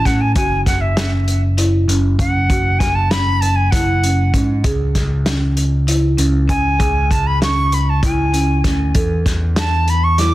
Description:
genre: progressive instrumental, band music in an uneven meter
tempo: 195 BPM (eighths)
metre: 7/8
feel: straight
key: unclear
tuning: A4 = 440 Hz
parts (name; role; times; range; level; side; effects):
- silver concert flute; melody; 0.0-10.3 s; E5 to D6; -19 LUFS; equal; digital delay
- marimba with soft mallets; arpeggios; 0.1-10.3 s; C#4 to A4; -22 LUFS; right 1 dB; digital delay
- overdriven picked electric bass; bass; 0.1-10.3 s; F#1 to A2; -17 LUFS; equal; none
- vintage drum kit; drums; 0.1-10.3 s; hi-hat, kick drum, snare drum; -20 LUFS; equal; none
room: light reverb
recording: dense, heavily limited modern master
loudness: -14 LUFS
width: side -16 dB against mid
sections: 0.0-10.3 A section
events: flute solo 0.0-10.3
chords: 0.4 F#5; 4.6 C#5; 9.0 E7sus4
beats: 0.05 | 0.36 0.66 0.97 1.27 1.58 1.89 2.19 | 2.50 2.81 3.11 3.42 3.73 4.04 4.34 | 4.65 4.96 5.26 5.57 5.88 6.19 6.49 | 6.80 7.11 7.42 7.72 8.03 8.34 8.65 | 8.95 9.26 9.57 9.88 10.18

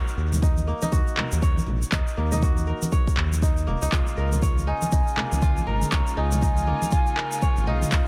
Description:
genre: afro house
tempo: 120 BPM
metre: 4/4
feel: swing 60% on 16ths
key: Eb minor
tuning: A4 = 441 Hz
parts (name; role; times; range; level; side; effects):
- kora; arpeggios; 0.0-8.1 s; Bb3 to Db5; -34 LUFS; equal; sidechain pumping, tape echo
- tube shaker; percussion; 0.1-8.0 s; none; -40 LUFS; equal; dub echo
- round analog bass; bass; 0.2-8.0 s; Eb1 to Eb2; -27 LUFS; equal; sidechain pumping
- congas; percussion; 0.3-7.8 s; none; -34 LUFS; equal; dub echo
- electronic kick drum; drums; 0.4-8.0 s; none; -25 LUFS; equal; none
- afro-pop drum kit; drums; 1.2-8.0 s; handclaps, toms; -33 LUFS; equal; none
- rich chamber string section; sustained chords; 3.9-8.1 s; Db3 to F4; -37 LUFS; equal; sidechain pumping
- mellow hollow jazz flute; melody; 4.7-8.1 s; F5 to Bb5; -31 LUFS; equal; tape echo
room: light reverb, small room ambience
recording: echo-heavy mix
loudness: -23 LUFS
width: mono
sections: 0.0-8.1 A section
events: none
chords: 0.0 Ebm7; 3.9 Db69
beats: 0.42 0.93 1.43 | 1.93 2.42 2.92 3.42 | 3.92 4.42 4.92 5.42 | 5.92 6.42 6.92 7.42 | 7.92

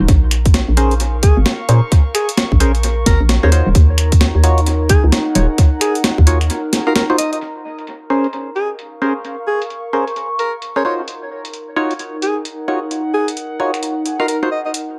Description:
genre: UK garage, two-step garage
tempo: 131 BPM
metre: 4/4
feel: swing 62% on 16ths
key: Bb minor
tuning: A4 = 440 Hz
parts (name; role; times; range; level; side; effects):
- hollow knocking FM bass; bass; 0.0-6.5 s; Eb1 to Bb2; -16 LUFS; equal; none
- warbly tape-like pad; texture; 0.0-15.0 s; Eb4 to Db6; -27 LUFS; equal; chorus, built-in reverb, phaser, sidechain pumping
- breakbeat sampler-style drum kit; drums; 0.1-14.9 s; finger snaps, hi-hat, snare drum; -22 LUFS; equal; low-pass filter on snare, low-pass filter on hats, low-pass filter on room, dub echo
- electronic kick drum; drums; 0.1-6.3 s; none; -14 LUFS; equal; none
- percussive organ stab; stabs; 0.8-14.5 s; Db4 to F5; -22 LUFS; equal; chorus, phaser, tape echo
- mellow alto saxophone; melody; 1.2-14.7 s; Ab4 to Eb5; -24 LUFS; equal; dub echo
room: light reverb, digital ambience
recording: echo-heavy mix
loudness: -16 LUFS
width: mono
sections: 0.0-7.4 A section; 7.4-15.0 B section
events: break 6.5-7.4; filter sweep on drum 7.4-15.0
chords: 0.1 Bbm9; 3.5 Ebm9; 7.4 Bbm9; 10.8 Ebm9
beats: | 0.09 0.54 1.00 1.46 | 1.92 2.38 2.83 3.29 | 3.75 4.21 4.67 5.12 | 5.58 6.04 6.50 6.96 | 7.41 7.87 8.33 8.79 | 9.25 9.70 10.16 10.62 | 11.08 11.54 11.99 12.45 | 12.91 13.37 13.83 14.28 | 14.74

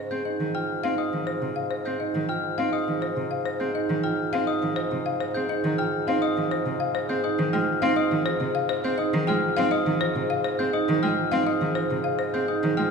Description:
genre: classical, minimalist pattern music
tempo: 103 BPM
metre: 3/4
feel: straight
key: Ab major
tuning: A4 = 440 Hz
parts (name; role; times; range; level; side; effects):
- folk marimba with hard mallets; melody; 0.0-12.9 s; C5 to G5; -29 LUFS; left 5 dB; none
- mellow bassoon; bass; 0.0-12.9 s; Ab2; -32 LUFS; left 1 dB; none
- rich cello; accompaniment; 0.1-12.9 s; C3 to C4; -29 LUFS; right 1 dB; none
- glockenspiel with soft plastic mallets; arpeggios; 0.1-12.9 s; Eb6 to G6; -31 LUFS; left 5 dB; none
- marimba with soft mallets; arpeggios; 0.1-12.9 s; Eb4 to C5; -28 LUFS; right 6 dB; none
room: wet recital hall reverb, RT60 1.7 s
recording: heard from further back in the room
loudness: -23 LUFS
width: side -5 dB against mid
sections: 0.0-12.9 A section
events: none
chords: 0.0 Ab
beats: 0.54 1.13 | 1.71 2.29 2.87 | 3.46 4.04 4.62 | 5.20 5.79 6.37 | 6.95 7.53 8.12 | 8.70 9.28 9.86 | 10.45 11.03 11.61 | 12.19 12.78

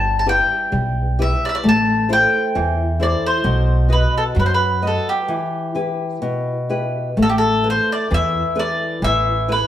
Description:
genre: fado-style ballad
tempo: 65 BPM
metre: 2/4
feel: rubato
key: E minor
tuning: A4 = 440 Hz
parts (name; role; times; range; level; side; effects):
- mandolin; melody; 0.0-9.7 s; G4 to A5; -19 LUFS; equal; none
- flamenco guitar; accompaniment; 0.0-9.7 s; B2 to D#5; -21 LUFS; left 2 dB; none
- upright bass; bass; 0.0-9.6 s; G1 to F#2; -20 LUFS; equal; none
room: wet stone room reverb, RT60 1.2 s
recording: band playing live in one room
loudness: -16 LUFS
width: side -11 dB against mid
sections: 0.0-7.2 A section; 7.2-9.7 B section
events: break 5.3-7.2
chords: 0.0 Em/G; 1.6 Am; 3.4 B; 5.3 Em; 7.2 Asus2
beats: 0.73 | 1.65 2.55 | 3.44 4.36 | 5.30 6.24 | 7.18 8.11 | 9.03

